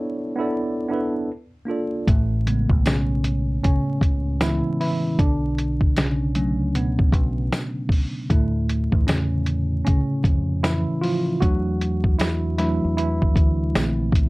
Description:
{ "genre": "lo-fi hip hop", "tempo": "77 BPM", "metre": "4/4", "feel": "swing 63% on 16ths", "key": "A major", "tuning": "A4 = 441 Hz", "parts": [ { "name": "mellow tine electric piano", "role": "accompaniment", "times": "0.0-14.3 s", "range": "A2 to D5", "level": "-23 LUFS", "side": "equal", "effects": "medium stereo tremolo, cassette tape, low-pass filter" }, { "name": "deep dub fingered electric bass", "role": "bass", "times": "2.1-14.3 s", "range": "A1 to F2", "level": "-25 LUFS", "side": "equal", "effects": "none" }, { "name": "lo-fi sampler-style drum kit", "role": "drums", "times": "2.1-14.3 s", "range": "hi-hat, kick drum, snare drum", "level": "-20 LUFS", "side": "equal", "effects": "none" }, { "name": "tambourine", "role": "percussion", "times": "2.9-14.0 s", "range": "none", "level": "-41 LUFS", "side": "left 3 dB", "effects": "none" } ], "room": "light reverb", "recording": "vinyl crackle", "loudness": "-19 LUFS", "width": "side -23 dB against mid", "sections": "0.0-2.1 A section; 2.1-14.3 B section", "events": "tine electric piano solo 2.1-14.3", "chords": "0.0 E7sus4; 1.3 Bbmaj7; 2.1 Amaj7; 5.2 Bm9; 8.3 Dmadd9; 11.4 E7sus4; 13.8 Bbmaj7", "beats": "0.51 1.29 | 2.06 2.84 3.62 4.40 | 5.18 5.96 6.74 7.52 | 8.30 9.08 9.86 10.64 | 11.42 12.20 12.97 13.75" }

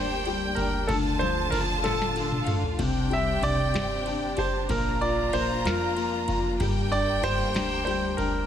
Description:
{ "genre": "six-eight pop ballad", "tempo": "63 BPM (dotted quarters)", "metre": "6/8", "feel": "straight", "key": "unclear", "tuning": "A4 = 440 Hz", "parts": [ { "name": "clear grand piano", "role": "melody", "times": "0.0-8.5 s", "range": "A4 to E5", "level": "-29 LUFS", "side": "right 2 dB", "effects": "ping-pong delay" }, { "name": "warm studio violin section", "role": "second line", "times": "0.0-8.5 s", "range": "F5 to Bb5", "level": "-33 LUFS", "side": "equal", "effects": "ping-pong delay" }, { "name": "clear upright piano", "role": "accompaniment", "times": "0.0-8.5 s", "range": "C3 to G4", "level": "-31 LUFS", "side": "left 6 dB", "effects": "none" }, { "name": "muted studio string section", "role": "sustained chords", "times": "0.0-8.5 s", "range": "C3 to A5", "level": "-34 LUFS", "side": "left 2 dB", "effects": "none" }, { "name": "upright bass", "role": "bass", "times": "0.0-8.5 s", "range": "G1 to F2", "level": "-32 LUFS", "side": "right 1 dB", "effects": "none" }, { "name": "booming analog drum machine", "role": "drums", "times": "0.3-8.3 s", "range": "kick drum, ride cymbal, snare drum, toms", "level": "-31 LUFS", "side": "right 1 dB", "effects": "none" } ], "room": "light reverb, small room ambience", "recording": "none", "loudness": "-24 LUFS", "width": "side -9 dB against mid", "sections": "0.0-8.5 A section", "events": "drum fill 1.8-2.8", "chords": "0.0 Gm; 0.9 Dm; 2.8 Csus2; 4.7 Bb; 6.6 Gm", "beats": "| 0.89 1.84 | 2.79 3.74 | 4.70 5.64 | 6.59 7.54" }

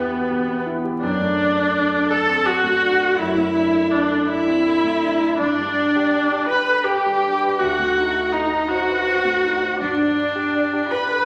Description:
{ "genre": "classical, slow romantic movement for piano quartet", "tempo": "55 BPM (dotted quarters)", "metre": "12/8", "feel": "rubato", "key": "unclear", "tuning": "A4 = 442 Hz", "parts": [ { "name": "rich violin", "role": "melody", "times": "0.0-11.2 s", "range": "B4 to B5", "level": "-30 LUFS", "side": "equal", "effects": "none" }, { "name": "rich cello", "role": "second line", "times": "0.0-11.2 s", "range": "B3 to B4", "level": "-28 LUFS", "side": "equal", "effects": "none" }, { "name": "clear viola", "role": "accompaniment", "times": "0.0-11.2 s", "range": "B3 to B4", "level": "-21 LUFS", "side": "equal", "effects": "none" }, { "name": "warm concert grand piano", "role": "accompaniment", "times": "0.0-11.2 s", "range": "D2 to C5", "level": "-29 LUFS", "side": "equal", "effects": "none" } ], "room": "wet recital hall reverb, RT60 1.4 s", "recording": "vinyl crackle", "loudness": "-19 LUFS", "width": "mono", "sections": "0.0-11.2 A section", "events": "none", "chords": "0.0 Em; 1.0 D/F#; 5.4 G; 7.6 D7b9; 9.8 G", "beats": "| 1.02 2.10 3.18 4.28 | 5.39 6.49 7.60 8.70 | 9.79 10.91" }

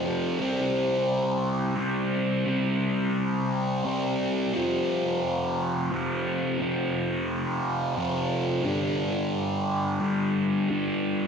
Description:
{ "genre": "rock", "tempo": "58 BPM (dotted quarters)", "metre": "6/8", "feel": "straight", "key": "unclear", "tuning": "A4 = 440 Hz", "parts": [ { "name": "fuzz guitar", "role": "solo", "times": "0.0-11.3 s", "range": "F2 to C4", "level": "-24 LUFS", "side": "equal", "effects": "distortion, phaser, diffuse ambient delay" } ], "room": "wet plate reverb, RT60 2.6 s", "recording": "dreamy mix soaked in reverb", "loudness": "-24 LUFS", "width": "side -6 dB against mid", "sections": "0.4-11.3 A section", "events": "none", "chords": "0.4 C5; 4.5 F5; 8.7 G5", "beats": "| 0.41 1.45 | 2.48 3.51 | 4.54 5.57 | 6.60 7.63 | 8.65 9.68 | 10.71" }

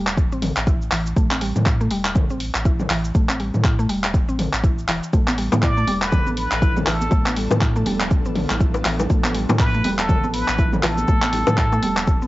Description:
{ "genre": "afro house", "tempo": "121 BPM", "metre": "4/4", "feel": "swing 59% on 16ths", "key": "unclear", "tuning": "A4 = 441 Hz", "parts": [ { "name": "mallet-like synth pluck", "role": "arpeggios", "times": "0.0-12.3 s", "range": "E3 to E4", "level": "-26 LUFS", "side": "equal", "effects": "chorus, sidechain pumping, cassette tape, analog delay" }, { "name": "warm sub bass", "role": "bass", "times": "0.0-12.3 s", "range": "E1 to A2", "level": "-26 LUFS", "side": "equal", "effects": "sidechain pumping" }, { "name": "deep house drum kit", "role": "drums", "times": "0.1-12.3 s", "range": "cabasa, handclaps, hi-hat, toms", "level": "-24 LUFS", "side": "equal", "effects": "none" }, { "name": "electronic kick drum", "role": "drums", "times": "0.2-12.2 s", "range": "none", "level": "-19 LUFS", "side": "equal", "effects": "none" }, { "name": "ethereal airy pad", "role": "sustained chords", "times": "5.8-12.3 s", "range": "F3 to A4", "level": "-31 LUFS", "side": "equal", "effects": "ensemble chorus, built-in reverb, sidechain pumping, cassette tape" }, { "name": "bongos", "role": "percussion", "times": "5.1-12.2 s", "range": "none", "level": "-24 LUFS", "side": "left 4 dB", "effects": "none" }, { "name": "congas", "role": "percussion", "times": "5.3-12.2 s", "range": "none", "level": "-30 LUFS", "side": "right 3 dB", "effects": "none" }, { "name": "trumpet with plunger mute", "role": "melody", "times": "5.6-12.3 s", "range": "A4 to D5", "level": "-24 LUFS", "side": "equal", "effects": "cassette tape, analog delay" } ], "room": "light reverb", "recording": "home recording on cassette, nothing above 7.6 kHz", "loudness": "-17 LUFS", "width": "side -18 dB against mid", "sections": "0.0-12.3 A section", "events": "none", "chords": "0.0 Am7; 5.1 Bm7b5", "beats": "0.17 0.67 | 1.17 1.66 2.16 2.65 | 3.15 3.65 4.14 4.64 | 5.13 5.63 6.12 6.62 | 7.12 7.61 8.11 8.61 | 9.10 9.60 10.09 10.59 | 11.08 11.58 12.08" }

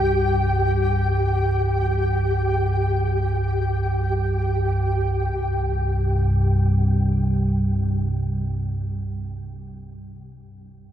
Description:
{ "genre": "dark ambient drone", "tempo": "free time", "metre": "none", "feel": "none", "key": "unclear", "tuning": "A4 = 439 Hz", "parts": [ { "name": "deep rumbling drone", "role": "drone", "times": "0.0-9.1 s", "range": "C2 to G2", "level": "-21 LUFS", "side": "equal", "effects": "built-in reverb" }, { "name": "flickering grainy texture", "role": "texture", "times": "0.0-5.3 s", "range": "G4 to G5", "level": "-25 LUFS", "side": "equal", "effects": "built-in reverb" } ], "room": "wet huge ambient reverb, RT60 8.1 s", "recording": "none", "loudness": "-20 LUFS", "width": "side -10 dB against mid", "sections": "0.0-5.3 A section; 5.3-9.9 B section", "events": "filter sweep on synth drone 0.0-5.3", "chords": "0.0 C5", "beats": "free time" }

